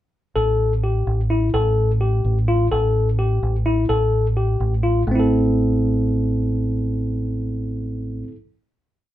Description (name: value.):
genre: progressive instrumental, band music in an uneven meter.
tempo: 255 BPM (eighths).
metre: 5/8.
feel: straight.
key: A minor.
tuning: A4 = 435 Hz.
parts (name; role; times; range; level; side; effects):
tine electric piano; arpeggios; 0.4-8.4 s; A3 to A4; -21 LUFS; left 1 dB; none.
deep dub fingered electric bass; bass; 0.4-8.2 s; A1; -20 LUFS; equal; none.
room: wet small room ambience, RT60 0.5 s.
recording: band playing live in one room.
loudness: -18 LUFS.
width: side -13 dB against mid.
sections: 0.4-5.1 groove; 5.1-7.4 final chord.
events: none.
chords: 0.4 A5; 1.5 F/A; 2.7 Emadd11/A; 3.9 Fadd9/A; 5.1 Am.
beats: | 0.35 0.59 0.83 1.06 1.30 | 1.53 1.77 2.01 2.24 2.48 | 2.72 2.95 3.19 3.42 3.66 | 3.89 4.13 4.37 4.60 4.84 | 5.07 5.31 5.54 5.78 6.01 | 6.25 6.49 6.72 6.96 7.19.